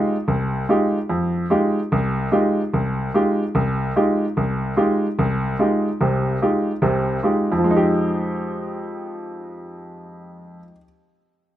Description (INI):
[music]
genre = jazz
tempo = 146 BPM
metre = 4/4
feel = swing 66% on 8ths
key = F minor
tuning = A4 = 440 Hz
[part]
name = clear baby grand piano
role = solo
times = 0.0-10.8 s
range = C2 to G4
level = -19 LUFS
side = equal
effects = none
[sound]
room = little or no reverb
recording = rough home demo mix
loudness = -18 LUFS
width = side -12 dB against mid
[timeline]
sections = 0.0-1.1 A section; 1.1-7.6 B section; 7.6-10.9 C section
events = none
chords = 0.0 Fm9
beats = 0.27 0.68 | 1.09 1.50 1.91 2.31 | 2.72 3.13 3.54 3.95 | 4.36 4.77 5.18 5.59 | 6.00 6.41 6.82 7.23 | 7.64 8.05 8.46 8.87 | 9.28 9.70 10.11 10.52